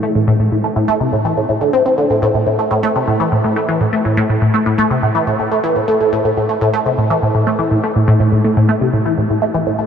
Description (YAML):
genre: ambient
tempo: 123 BPM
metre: 4/4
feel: straight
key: A minor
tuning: A4 = 436 Hz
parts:
  - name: resonant blip pluck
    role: solo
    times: 0.0-9.9 s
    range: A2 to C4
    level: -13 LUFS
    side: equal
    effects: phaser, lush chorus, ping-pong delay
room: wet huge ambient reverb, RT60 7.7 s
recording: dark, warm production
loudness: -13 LUFS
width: side -7 dB against mid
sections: 0.0-9.9 A section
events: none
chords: none